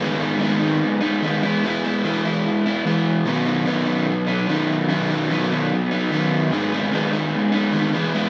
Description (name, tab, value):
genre	rock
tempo	148 BPM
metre	4/4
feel	straight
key	unclear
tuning	A4 = 438 Hz
part	crunchy overdriven guitar	solo	0.0-8.3 s	G#2 to E4	-21 LUFS	equal	none
room	moderate studio reverb, RT60 0.6 s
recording	band playing live in one room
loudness	-21 LUFS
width	mono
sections	0.0-8.3 A section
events	none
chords	0.0 G#m; 1.4 E; 3.3 B; 6.5 G#m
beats	| 0.01 0.41 0.82 1.23 | 1.64 2.05 2.45 2.86 | 3.27 3.68 4.08 4.49 | 4.90 5.30 5.71 6.12 | 6.52 6.93 7.33 7.74 | 8.14